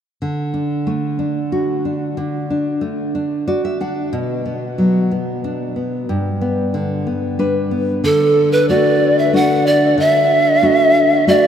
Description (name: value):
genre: andean folk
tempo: 92 BPM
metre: 3/4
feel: straight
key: unclear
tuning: A4 = 440 Hz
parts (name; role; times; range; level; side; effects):
- nylon-string guitar; accompaniment; 0.2-11.5 s; G2 to F#5; -17 LUFS; equal; none
- breathy polished pan flute; melody; 8.0-11.5 s; A4 to F#5; -12 LUFS; right 1 dB; none
room: wet huge ambient reverb, RT60 7.6 s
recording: in a vast, echoing space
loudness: -14 LUFS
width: side -9 dB against mid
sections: 0.2-8.0 A section; 8.0-11.5 B section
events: nylon-string guitar fill 3.2-4.1, 7.1-8.0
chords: 0.2 D; 4.1 Bm; 6.1 G; 8.0 D